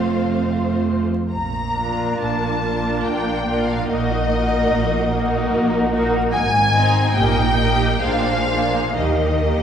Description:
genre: classical, slow romantic movement for string orchestra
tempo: 62-75 BPM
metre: 3/4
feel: rubato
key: Eb major from 6.3 s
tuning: A4 = 440 Hz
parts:
  - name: rich studio violin section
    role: melody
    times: 0.0-9.6 s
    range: Eb5 to Bb5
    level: -22 LUFS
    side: left 2 dB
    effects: none
  - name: warm studio violin section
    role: second line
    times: 0.0-9.6 s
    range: Eb4 to Eb5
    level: -24 LUFS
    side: equal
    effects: none
  - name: rich studio viola section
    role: accompaniment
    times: 0.0-9.6 s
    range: A3 to Eb4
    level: -23 LUFS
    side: right 2 dB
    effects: none
  - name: rich studio cello section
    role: bass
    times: 0.0-9.6 s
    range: F2 to Eb3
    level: -24 LUFS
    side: right 1 dB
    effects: none
  - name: rich studio double bass section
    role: bass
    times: 0.0-9.6 s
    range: F1 to Eb2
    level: -25 LUFS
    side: right 1 dB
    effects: none
room: wet concert hall reverb, RT60 2.3 s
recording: heard from further back in the room, vinyl crackle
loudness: -17 LUFS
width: side -8 dB against mid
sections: 0.0-9.6 A section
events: none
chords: 0.0 F; 1.3 Bb; 3.9 Ebm/Bb; 6.3 Ab; 7.2 Eb/Bb; 8.0 Bb9; 9.0 Eb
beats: 0.37 | 1.30 2.21 3.06 | 3.88 4.72 5.54 | 6.34 7.17 8.03 | 8.97

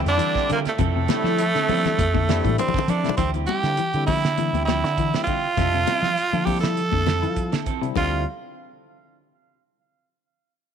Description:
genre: afrobeat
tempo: 100 BPM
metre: 4/4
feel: straight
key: D minor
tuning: A4 = 440 Hz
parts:
  - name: barky tine electric piano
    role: accompaniment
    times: 0.0-8.2 s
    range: D3 to E5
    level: -32 LUFS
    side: left 13 dB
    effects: auto-pan
  - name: electric guitar at the edge of break-up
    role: arpeggios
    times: 0.0-8.1 s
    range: C3 to E4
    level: -30 LUFS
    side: left 12 dB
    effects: none
  - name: clean electric guitar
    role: stabs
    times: 0.0-8.2 s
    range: F3 to A4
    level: -32 LUFS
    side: right 13 dB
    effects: lush chorus
  - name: raspy tenor saxophone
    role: melody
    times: 0.1-8.2 s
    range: A3 to A4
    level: -24 LUFS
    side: right 4 dB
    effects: none
  - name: mellow trumpet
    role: second line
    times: 0.1-2.6, 8.0-8.2 s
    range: A4 to F5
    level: -33 LUFS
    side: right 13 dB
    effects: none
  - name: muted trombone section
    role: second line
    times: 0.1-2.6 s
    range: A2 to D3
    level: -34 LUFS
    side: left 12 dB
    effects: none
  - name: deep dub fingered electric bass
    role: bass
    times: 0.1-8.2 s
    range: D2 to F3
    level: -25 LUFS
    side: equal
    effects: none
  - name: damped 70s drum kit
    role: drums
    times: 0.1-8.1 s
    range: crash cymbal, hi-hat, kick drum, snare drum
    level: -28 LUFS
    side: right 3 dB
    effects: none
  - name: congas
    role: percussion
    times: 0.8-8.1 s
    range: none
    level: -28 LUFS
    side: left 13 dB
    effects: none
room: light reverb, studio reverb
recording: 1960s-style stereo with parts hard left and right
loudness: -19 LUFS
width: side -8 dB against mid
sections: 0.0-3.2 A section; 3.2-8.0 B section; 8.0-10.4 C section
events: drum fill 2.3-3.2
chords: 0.0 Dm11; 0.8 Fmaj7; 3.2 Dm11; 5.6 Fmaj7; 8.0 Dm11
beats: 0.20 | 0.80 1.39 1.99 2.59 | 3.18 3.78 4.38 4.97 | 5.57 6.17 6.77 7.37 | 7.97

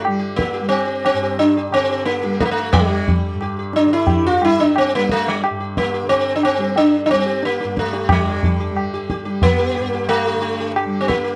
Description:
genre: indian classical, Hindustani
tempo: 90 BPM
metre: 4/4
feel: straight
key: G raga kafi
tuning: A4 = 440 Hz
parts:
  - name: sitar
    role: melody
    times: 0.0-11.4 s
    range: G3 to G4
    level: -20 LUFS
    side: equal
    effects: none
  - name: tanpura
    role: drone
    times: 0.0-11.4 s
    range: G2 to G3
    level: -28 LUFS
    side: equal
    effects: none
  - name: tabla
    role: percussion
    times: 0.0-11.3 s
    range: none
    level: -23 LUFS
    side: equal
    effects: none
room: moderate small room ambience, RT60 0.5 s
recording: dark, warm production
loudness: -18 LUFS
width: mono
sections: 0.0-11.4 A section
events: none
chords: none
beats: | 0.04 0.72 1.40 2.07 | 2.74 3.42 4.09 4.76 | 5.43 6.10 6.76 7.43 | 8.10 8.77 9.43 10.10 | 10.76

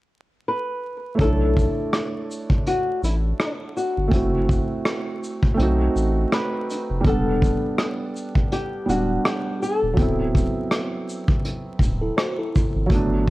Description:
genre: lo-fi hip hop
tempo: 82 BPM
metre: 4/4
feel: swing 58% on 16ths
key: B minor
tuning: A4 = 440 Hz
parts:
  - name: flamenco guitar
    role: melody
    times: 0.5-10.7 s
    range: D4 to B4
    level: -26 LUFS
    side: left 2 dB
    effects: low-pass filter
  - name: felt-muted upright piano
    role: accompaniment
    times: 1.1-13.3 s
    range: F#3 to F#5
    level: -25 LUFS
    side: right 2 dB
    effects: low-pass filter
  - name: saturated sub bass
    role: bass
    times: 1.2-13.3 s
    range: D1 to B1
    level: -23 LUFS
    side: equal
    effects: none
  - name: vintage brush drum kit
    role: drums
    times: 1.2-13.3 s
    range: hi-hat, kick drum, rim click, shaker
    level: -22 LUFS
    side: equal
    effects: vintage 12-bit sampler grit
  - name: mellow tine electric piano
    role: second line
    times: 12.0-12.9 s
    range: E4 to C5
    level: -28 LUFS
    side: equal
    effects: medium stereo tremolo, low-pass filter, analog delay
room: small room ambience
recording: vinyl crackle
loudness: -20 LUFS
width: side -18 dB against mid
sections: 0.0-1.2 A section; 1.2-13.3 B section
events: none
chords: 0.0 N.C.; 1.2 Bm11; 4.1 F#m7b5; 5.6 B7b9; 7.0 Em9; 10.0 D13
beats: 0.46 | 1.19 1.93 2.66 3.39 | 4.12 4.85 5.58 6.32 | 7.05 7.78 8.51 9.24 | 9.97 10.71 11.44 12.17 | 12.90

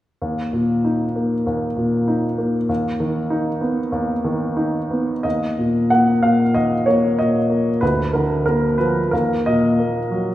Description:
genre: classical, romantic character piece for solo piano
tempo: 95 BPM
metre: 4/4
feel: uneven beats, rubato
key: Eb minor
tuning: A4 = 442 Hz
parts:
  - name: warm baby grand piano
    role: solo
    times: 0.2-10.3 s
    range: D2 to Gb5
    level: -17 LUFS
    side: equal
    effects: none
room: wet recital hall reverb, RT60 1.7 s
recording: heard from further back in the room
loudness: -17 LUFS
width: side -14 dB against mid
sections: 0.2-5.2 A section; 5.2-10.3 B section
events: none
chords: 0.2 Eb5; 2.7 B/D#; 5.2 Eb5; 7.8 Bb/D; 9.1 Ebm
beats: | 0.21 0.84 1.46 2.08 | 2.69 3.30 3.92 4.56 | 5.25 5.91 6.55 7.18 | 7.82 8.46 9.12 9.79

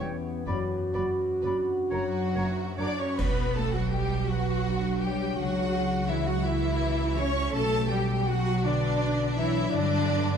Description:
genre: classical, slow romantic movement for symphony orchestra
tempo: 40-58 BPM (dotted quarters)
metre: 6/8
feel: rubato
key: B minor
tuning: A4 = 441 Hz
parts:
  - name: rich studio violin section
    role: melody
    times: 0.0-10.4 s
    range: C#5 to D6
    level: -35 LUFS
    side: left 2 dB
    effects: none
  - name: clear oboe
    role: second line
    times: 0.0-2.9 s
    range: C#5 to D5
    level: -42 LUFS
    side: right 2 dB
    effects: none
  - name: clear studio violin section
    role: second line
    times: 0.0-10.4 s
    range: D4 to D5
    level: -35 LUFS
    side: left 2 dB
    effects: none
  - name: silver concert flute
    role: second line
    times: 0.0-2.9 s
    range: G5 to B5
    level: -42 LUFS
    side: left 1 dB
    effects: none
  - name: warm studio viola section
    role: accompaniment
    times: 0.0-10.4 s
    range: F#3 to D5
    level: -33 LUFS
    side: right 2 dB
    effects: none
  - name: mellow French horn section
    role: sustained chords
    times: 0.0-2.7 s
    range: B3 to F#4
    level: -30 LUFS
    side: right 1 dB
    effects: none
  - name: concert harp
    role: arpeggios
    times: 0.0-10.4 s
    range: E2 to B4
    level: -32 LUFS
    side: left 7 dB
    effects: none
  - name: rich studio cello section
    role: bass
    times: 0.0-10.4 s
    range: F#2 to D4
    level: -33 LUFS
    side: right 3 dB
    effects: none
  - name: rich studio double bass section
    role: bass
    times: 0.0-10.4 s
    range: F#1 to G2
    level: -31 LUFS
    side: right 3 dB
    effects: none
  - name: cymbal swell, clash cymbals and concert bass drum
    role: percussion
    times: 0.5-4.6 s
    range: none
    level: -36 LUFS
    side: right 1 dB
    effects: none
room: moderate concert hall reverb, RT60 2.1 s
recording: dark, warm production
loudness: -25 LUFS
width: side -7 dB against mid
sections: 0.0-3.2 A section; 3.2-10.4 B section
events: band accent 3.2-3.9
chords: 0.5 Bm/F#; 1.9 F#; 3.2 Bm; 5.4 F#7/C#; 7.5 Bm; 9.7 G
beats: | 0.48 1.93 | 3.18 4.29 | 5.38 6.45 | 7.54 8.64 | 9.72

